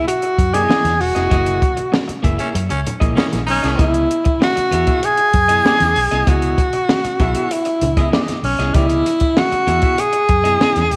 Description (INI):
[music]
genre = funk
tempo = 97 BPM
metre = 4/4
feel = straight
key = C# dorian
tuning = A4 = 440 Hz
[part]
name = breathy tenor saxophone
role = melody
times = 0.0-11.0 s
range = C#4 to G#4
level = -19 LUFS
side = equal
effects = none
[part]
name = electric guitar at the edge of break-up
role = accompaniment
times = 0.0-10.9 s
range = A#3 to E5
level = -27 LUFS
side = equal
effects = none
[part]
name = compact cocktail drum kit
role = drums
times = 0.1-11.0 s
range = hi-hat, kick drum, snare drum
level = -21 LUFS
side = equal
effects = none
[part]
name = vintage muted fingered electric bass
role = bass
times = 0.4-11.0 s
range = E1 to F#2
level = -23 LUFS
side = equal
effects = none
[part]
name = congas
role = percussion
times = 0.7-10.9 s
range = none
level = -31 LUFS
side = equal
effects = none
[part]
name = raspy baritone saxophone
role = second line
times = 2.4-3.9 s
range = C#4 to D#4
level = -28 LUFS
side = equal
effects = none
[sound]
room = moderate echo chamber reverb, RT60 1.7 s, small room ambience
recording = none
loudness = -16 LUFS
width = mono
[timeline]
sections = 0.0-11.0 A section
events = band accent 1.3-3.8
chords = 0.0 C#m9 (rootless); 1.3 F#13; 3.8 C#m9